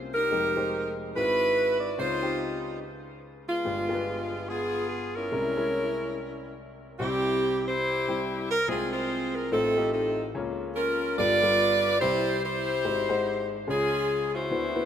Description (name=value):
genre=gospel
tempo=144 BPM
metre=4/4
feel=swing 59% on 8ths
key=unclear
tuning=A4 = 440 Hz
part: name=warm grand piano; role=accompaniment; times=0.0-14.9 s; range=F1 to Gb5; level=-32 LUFS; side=left 3 dB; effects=none
part: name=edgy saxophone section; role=melody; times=0.1-14.9 s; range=Ab3 to D5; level=-26 LUFS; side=equal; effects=tape echo
room=moderate plate reverb, RT60 2.8 s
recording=rough home demo mix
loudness=-25 LUFS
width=side -9 dB against mid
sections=0.0-7.0 A section; 7.0-14.9 B section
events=none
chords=0.3 Fm11; 1.1 Ab7alt; 2.0 Dbmaj9; 3.7 G7b9; 5.3 C7b9b13; 7.0 C; 8.7 Fm/C; 9.5 F7/A; 10.3 Bbm/Db; 11.2 G9; 12.0 C; 12.8 Ab7; 13.7 Db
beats=| 0.32 0.73 1.15 1.57 | 1.98 2.40 2.82 3.23 | 3.65 4.07 4.49 4.91 | 5.32 5.74 6.16 6.58 | 7.00 7.42 7.83 8.25 | 8.67 9.09 9.51 9.92 | 10.34 10.76 11.18 11.60 | 12.01 12.43 12.85 13.26 | 13.68 14.10 14.51